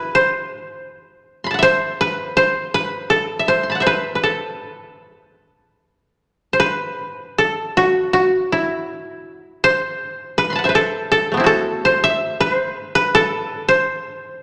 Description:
japanese traditional, Japanese chamber music; 80 BPM; 4/4; rubato; A kumoi; A4 = 440 Hz
koto; solo; 0.0-14.4 s; A3 to C6; -18 LUFS; equal
moderate concert hall reverb, RT60 2.0 s; -18 LUFS; mono
0.0-6.2 A section; 6.2-14.4 B section

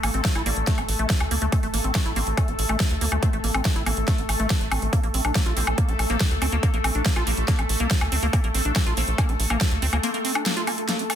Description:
psychedelic trance; 141 BPM; 4/4; straight; A4 = 441 Hz
bubbling stepped-filter texture; sustained chords; 0.0-11.2 s; A3 to A4; -30 LUFS; left 1 dB; chorus, built-in reverb, sidechain pumping
liquid acid bass; riff; 0.0-11.0 s; A3 to F4; -30 LUFS; left 1 dB; chorus, auto-pan, sidechain pumping, ping-pong delay
tight sequencer bass; bass; 0.0-10.0 s; A1 to D2; -25 LUFS; equal
big-room dance drum kit; drums; 0.0-11.2 s; hi-hat, snare drum, woodblock; -27 LUFS; equal
electronic kick drum; drums; 0.2-9.7 s; -23 LUFS; equal
resonant blip pluck; second line; 0.5-11.2 s; G3 to D4; -39 LUFS; left 3 dB
light reverb, digital ambience; dense, heavily limited modern master; -20 LUFS; side -10 dB against mid
0.0-11.2 A section
filter sweep on acid bass 0.0-11.2
0.0 A5; 4.9 Bb5

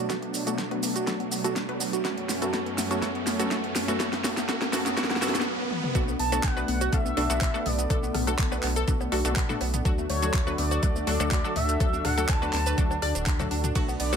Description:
progressive house; 123 BPM; 4/4; straight; B minor; A4 = 444 Hz
warm analog pad; sustained chords; 0.0-14.2 s; F#2 to A4; -34 LUFS; right 2 dB; chorus, sidechain pumping
glassy wavetable pluck; arpeggios; 0.0-14.2 s; A3 to D5; -33 LUFS; equal; chorus, sidechain pumping, digital delay
riser; sound effects; 0.0-5.9 s; -34 LUFS; right 1 dB
wide unison pluck; stabs; 0.1-14.2 s; F#3 to B4; -32 LUFS; left 3 dB; sidechain pumping, digital delay
electronic kick drum; drums; 0.1-13.9 s; -26 LUFS; equal; overdrive, high-pass filter on kick, high-pass filter on room
pop drum kit; drums; 0.1-14.2 s; handclaps, hi-hat, ride cymbal, rim click, shaker, snare drum, toms; -31 LUFS; right 1 dB; overdrive
round analog bass; bass; 6.0-14.2 s; D1 to D2; -30 LUFS; equal; sidechain pumping
electronic bongos, congas and toms; percussion; 6.1-14.2 s; -37 LUFS; left 5 dB; overdrive, sidechain pumping on perc, sidechain pumping on toms
expressive synth lead; melody; 6.2-14.2 s; C#5 to A5; -31 LUFS; right 1 dB; lush chorus, cassette tape, sidechain pumping, digital delay
light reverb; -24 LUFS; side -7 dB against mid
0.0-6.0 A section; 6.0-14.2 B section
build-up 0.0-6.0; drum fill 0.0-5.5, 5.7; riser 0.0-6.0; filter sweep on synth arpeggio sound 0.0-6.0; filter sweep on synth pluck 0.0-6.0; stop 5.5-6.0; drop 6.0-14.2
0.0 Bm7; 2.0 F#m; 6.0 Bm7; 9.9 D

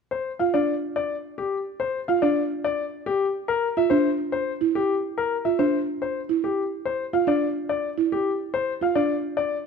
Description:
classical, minimalist pattern music; 107 BPM; 3/4; straight; A4 = 440 Hz
clear grand piano; melody; 0.1-9.6 s; G4 to F5; -25 LUFS; left 6 dB
buzzing marimba with soft mallets; arpeggios; 0.4-9.1 s; D4 to F4; -24 LUFS; right 4 dB
light reverb; close, detailed microphones; -22 LUFS; side -5 dB against mid
0.1-9.7 A section
0.1 N.C.; 3.5 G7(no3) (rootless)

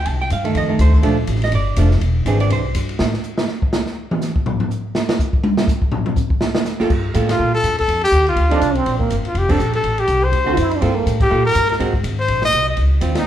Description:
jazz, small-group swing and bop; 245 BPM; 4/4; swing 58% on 8ths; A4 = 437 Hz
archtop guitar, miked and amplified; accompaniment; 0.0-2.7, 6.8-13.3 s; D3 to A5; -21 LUFS; right 3 dB
upright bass; bass; 0.0-3.1, 6.8-13.3 s; E1 to Bb2; -18 LUFS; equal
open jazz drum kit; drums; 0.1-13.2 s; crash cymbal, hi-hat, kick drum, ride cymbal, snare drum, toms; -21 LUFS; equal
clear trumpet; melody; 7.3-13.3 s; Eb4 to Eb5; -18 LUFS; left 2 dB
trombone with plunger mute; second line; 8.5-11.1 s; Bb3 to F#4; -21 LUFS; right 4 dB
moderate large studio reverb, RT60 1.2 s; band playing live in one room; -15 LUFS; side -11 dB against mid
0.0-6.9 A section; 6.9-13.3 B section
drum solo 3.0-6.9; band accent 7.3, 9.5, 11.2, 13.1
0.1 Cm; 0.5 F6; 1.0 Bbmaj7; 2.0 E7alt; 3.0 N.C.; 6.4 Gbmmaj7; 6.9 Gm9; 7.9 F7(no3); 8.9 Bb5; 9.8 Am7; 10.3 D7; 10.8 Gm9; 11.8 Ab9

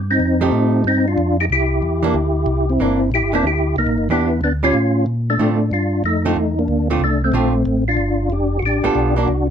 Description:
soul jazz organ trio; 185 BPM; 4/4; swing 64% on 8ths; C mixolydian; A4 = 440 Hz
mellow tonewheel organ; bass; 0.0-9.5 s; E1 to Bb2; -20 LUFS; equal; slow rotary speaker
percussive tonewheel organ; melody; 0.1-9.5 s; A3 to G4; -18 LUFS; left 1 dB; chorus vibrato, fast rotary speaker
archtop guitar, miked and amplified; accompaniment; 0.4-9.3 s; D3 to A4; -20 LUFS; right 4 dB
light reverb; dark, warm production; -15 LUFS; side -8 dB against mid
0.0-9.5 A section
0.2 F9; 1.5 C9; 4.1 Em7; 4.7 Aaug; 5.4 Dm7; 8.0 G9

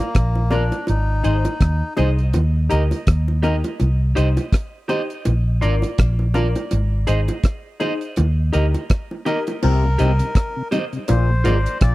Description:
roots reggae; 82 BPM; 4/4; swing 58% on 16ths; C minor; A4 = 439 Hz
melodica; melody; 0.0-1.9, 9.3-11.9 s; Bb3 to D5; -27 LUFS; left 2 dB; tape echo
deep reggae drum kit; drums; 0.0-11.9 s; crash cymbal, hi-hat, kick drum, rim click; -19 LUFS; equal
vintage muted fingered electric bass; bass; 0.2-11.9 s; Ab1 to Eb2; -17 LUFS; equal
bongos; percussion; 0.4-11.3 s; -26 LUFS; right 2 dB
clean electric guitar; accompaniment; 0.5-11.6 s; F4 to Eb5; -28 LUFS; right 4 dB; spring reverb, tape echo
filtered dub chord stab; stabs; 0.5-9.5 s; D4 to C5; -25 LUFS; left 4 dB; chorus
mellow clav; riff; 9.6-11.9 s; Ab2 to C3; -24 LUFS; left 6 dB; phaser
mellow tonewheel organ; accompaniment; 9.8-11.5 s; Bb2 to Eb4; -27 LUFS; left 2 dB; chorus vibrato, slow rotary speaker, tape echo
little or no reverb; dry, close 1970s-style studio recording; -17 LUFS; side -18 dB against mid
0.0-9.6 A section; 9.6-11.9 B section
0.0 Bb; 0.9 Ab; 2.3 Eb; 3.8 Cm; 5.3 Bb; 6.7 Ab; 8.2 Eb; 9.6 Cm; 11.1 Bb

